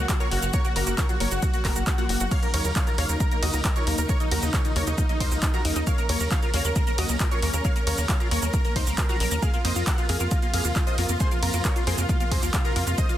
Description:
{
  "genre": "uplifting trance",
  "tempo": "135 BPM",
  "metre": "4/4",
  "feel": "straight",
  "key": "unclear",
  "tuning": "A4 = 442 Hz",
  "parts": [
    { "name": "dense compressed supersaw", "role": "melody", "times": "0.0-13.2 s", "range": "Bb3 to Gb5", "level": "-30 LUFS", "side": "equal", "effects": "sidechain pumping, dub echo" },
    { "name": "analog pluck", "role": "second line", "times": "0.0-13.2 s", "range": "Eb5 to Gb6", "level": "-36 LUFS", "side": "right 1 dB", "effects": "chorus, cassette tape, sidechain pumping, dub echo" },
    { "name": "dark studio string section", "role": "sustained chords", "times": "0.0-13.2 s", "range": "C3 to Gb4", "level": "-34 LUFS", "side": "equal", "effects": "vintage 12-bit sampler grit, sidechain pumping" },
    { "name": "liquid acid bass", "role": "arpeggios", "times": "0.0-13.1 s", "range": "Bb3 to F4", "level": "-34 LUFS", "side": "left 4 dB", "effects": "phaser, ensemble chorus, sidechain pumping, dub echo" },
    { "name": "tight sequencer bass", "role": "bass", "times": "0.0-12.9 s", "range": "Gb1 to F2", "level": "-26 LUFS", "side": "equal", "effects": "sidechain pumping" },
    { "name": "electronic kick drum", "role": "drums", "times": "0.1-13.1 s", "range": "none", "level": "-24 LUFS", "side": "equal", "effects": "none" },
    { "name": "punchy analog drum machine", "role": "drums", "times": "0.1-13.2 s", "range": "crash cymbal, handclaps, hi-hat, ride cymbal, shaker", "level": "-30 LUFS", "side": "right 1 dB", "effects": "none" }
  ],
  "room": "little or no reverb",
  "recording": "dense, heavily limited modern master, faint mains hum",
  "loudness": "-21 LUFS",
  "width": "side -12 dB against mid",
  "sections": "0.0-13.2 A section",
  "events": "none",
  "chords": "0.0 Gb; 2.3 Ebm7; 9.4 Fsus4"
}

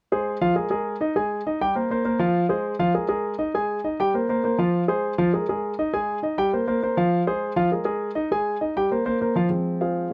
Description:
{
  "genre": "latin",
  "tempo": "201 BPM",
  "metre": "4/4",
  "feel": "straight",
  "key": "F minor",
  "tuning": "A4 = 440 Hz",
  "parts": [
    { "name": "dark concert grand piano", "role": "solo", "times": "0.1-10.1 s", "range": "Bb2 to Ab5", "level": "-24 LUFS", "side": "equal", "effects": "none" }
  ],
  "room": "light reverb",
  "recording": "close, detailed microphones",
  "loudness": "-24 LUFS",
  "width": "mono",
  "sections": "0.0-9.5 A section",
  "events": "none",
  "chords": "0.0 Fm; 0.6 Absus2; 1.2 Ab5; 1.8 Fsus4; 2.4 Fm; 2.9 Absus2; 3.5 Ab5; 4.1 Fsus4; 4.7 Fm; 5.3 Absus2; 5.9 Ab5; 6.5 Fsus4; 7.1 Fm; 7.7 Absus2; 8.3 Ab5; 8.9 Fsus4; 9.5 Fm"
}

